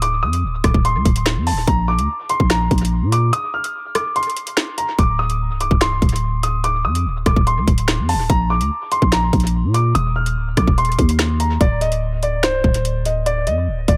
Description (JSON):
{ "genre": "hip hop, drill", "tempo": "145 BPM", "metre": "4/4", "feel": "half-time", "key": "D phrygian", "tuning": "A4 = 441 Hz", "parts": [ { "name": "dark baby grand piano", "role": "melody", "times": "0.0-14.0 s", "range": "C5 to F6", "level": "-24 LUFS", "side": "equal", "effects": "low-pass filter, dub echo" }, { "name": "growling 808-style bass", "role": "bass", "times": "0.0-14.0 s", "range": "C1 to Bb2", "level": "-21 LUFS", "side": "equal", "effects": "none" }, { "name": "drill drum kit", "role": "drums", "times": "0.0-14.0 s", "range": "finger snaps, hi-hat, kick drum, rim click, snare drum", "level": "-21 LUFS", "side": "equal", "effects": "dub echo" } ], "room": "light reverb", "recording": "echo-heavy mix", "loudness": "-18 LUFS", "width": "mono", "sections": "0.0-11.6 A section; 11.6-14.0 B section", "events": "break 3.3-5.0", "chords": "0.0 Dm7; 1.7 Bb; 3.3 N.C.; 5.0 D7(no3); 8.3 Bb; 10.0 Ebsus2; 11.6 D7(no3)", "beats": "| 0.02 0.43 0.85 1.26 | 1.68 2.09 2.50 2.92 | 3.33 3.74 4.16 4.57 | 4.99 5.40 5.81 6.23 | 6.64 7.05 7.47 7.88 | 8.30 8.71 9.12 9.54 | 9.95 10.37 10.78 11.19 | 11.61 12.02 12.43 12.85 | 13.26 13.68" }